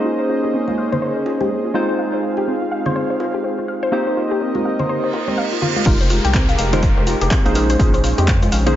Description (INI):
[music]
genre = deep house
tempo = 124 BPM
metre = 4/4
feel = swing 60% on 16ths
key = F minor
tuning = A4 = 441 Hz
[part]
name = warm analog pad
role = sustained chords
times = 0.0-8.8 s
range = Ab3 to F5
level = -24 LUFS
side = equal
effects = chorus, vintage 12-bit sampler grit, sidechain pumping
[part]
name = warbly dusty pluck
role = arpeggios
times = 0.0-8.7 s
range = C4 to F5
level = -23 LUFS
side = left 2 dB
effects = chorus, sidechain pumping, diffuse ambient delay
[part]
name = warm analog keys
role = stabs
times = 0.0-8.7 s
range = Ab3 to C5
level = -22 LUFS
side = equal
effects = chorus, sidechain pumping, low-pass filter, diffuse ambient delay
[part]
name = congas and bongos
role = percussion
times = 0.7-8.7 s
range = none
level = -28 LUFS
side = right 3 dB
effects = none
[part]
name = reverse cymbal and downlifter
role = sound effects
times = 5.1-8.8 s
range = none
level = -27 LUFS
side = right 3 dB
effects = none
[part]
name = rubbery square bass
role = bass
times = 5.9-8.8 s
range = F1 to F2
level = -19 LUFS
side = equal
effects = sidechain pumping
[part]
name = electronic kick drum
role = drums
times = 5.9-8.4 s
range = none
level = -17 LUFS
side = equal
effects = none
[part]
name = punchy analog drum machine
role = drums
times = 5.9-8.7 s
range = crash cymbal, handclaps, hi-hat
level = -26 LUFS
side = equal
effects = low-pass filter on hats, low-pass filter on cymbals, low-pass filter on snare
[part]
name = tube shaker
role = percussion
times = 5.9-8.7 s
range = none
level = -34 LUFS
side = right 3 dB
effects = none
[sound]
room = moderate plate reverb, RT60 1.6 s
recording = dreamy mix soaked in reverb, nothing above 7.6 kHz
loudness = -16 LUFS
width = side -12 dB against mid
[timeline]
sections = 0.0-5.9 A section; 5.9-8.8 B section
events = filter sweep on synth keys 0.0-5.9; filter sweep on synth pluck 0.0-5.9; reverse cymbal 5.1-5.9; drop 5.9-8.8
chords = 0.0 Bbm11; 1.7 Ab6; 3.9 Cm7; 5.9 Fm11; 7.6 Bbm11